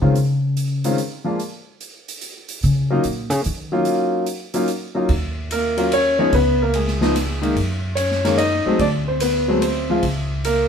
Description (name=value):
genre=jazz piano trio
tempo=146 BPM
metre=3/4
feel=swing 67% on 8ths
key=Eb minor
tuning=A4 = 439 Hz
part: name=clear concert grand piano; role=melody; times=0.0-10.7 s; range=Eb3 to Eb5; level=-18 LUFS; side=left 1 dB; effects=none
part: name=upright bass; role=bass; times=0.0-10.7 s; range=Db2 to Eb3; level=-21 LUFS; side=equal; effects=none
part: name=swinging big-band drum kit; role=drums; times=0.2-10.6 s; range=hi-hat, kick drum, ride cymbal, snare drum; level=-29 LUFS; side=right 2 dB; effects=none
room=moderate studio reverb, RT60 0.8 s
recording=band playing live in one room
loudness=-17 LUFS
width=side -7 dB against mid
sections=0.0-5.1 A section; 5.1-10.7 B section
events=upright bass solo 0.0-5.1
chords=0.2 Db; 1.4 N.C.; 2.6 Ebm9; 5.1 Eb7sus2; 6.3 Db7(no3); 7.6 Gbsus2; 8.8 D7(b5, no3); 10.0 Bbm/Db